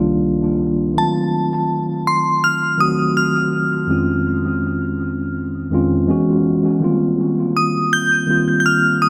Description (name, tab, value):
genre	R&B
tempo	82 BPM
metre	4/4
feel	swing 58% on 16ths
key	unclear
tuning	A4 = 440 Hz
part	mellow tine electric piano	accompaniment	0.0-9.1 s	C2 to Gb4	-19 LUFS	equal	analog delay
part	glassy synth bell	melody	1.0-9.1 s	A5 to G6	-20 LUFS	equal	chorus, phaser, analog delay
room	moderate echo chamber reverb, RT60 2.8 s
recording	echo-heavy mix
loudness	-18 LUFS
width	mono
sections	0.0-6.8 A section; 6.8-9.1 B section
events	none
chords	0.0 Cm11; 1.0 F7b9; 3.9 Dbmaj9/F; 6.1 E69; 6.8 Eb69